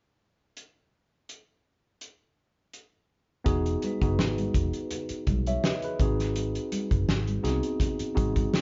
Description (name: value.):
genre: lush 1970s-style soul.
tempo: 83 BPM.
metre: 4/4.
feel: swing 54% on 16ths.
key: unclear.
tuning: A4 = 444 Hz.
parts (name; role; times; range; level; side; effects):
warm soul drum kit; drums; 0.6-8.6 s; hi-hat, kick drum, snare drum; -31 LUFS; equal; none.
tine electric piano; accompaniment; 3.4-8.6 s; B3 to E5; -33 LUFS; equal; none.
vintage muted fingered electric bass; bass; 3.5-8.5 s; E1 to B#1; -32 LUFS; equal; none.
congas; percussion; 3.8-8.6 s; none; -39 LUFS; equal; none.
vibraphone with soft mallets; texture; 3.8-5.5 s; B4; -46 LUFS; equal; none.
room: light reverb.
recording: band playing live in one room, nothing above 7.5 kHz.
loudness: -28 LUFS.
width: mono.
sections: 0.6-3.5 A section; 3.5-8.6 B section.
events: none.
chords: 0.6 N.C.; 3.5 Emaj7; 6.0 G#7.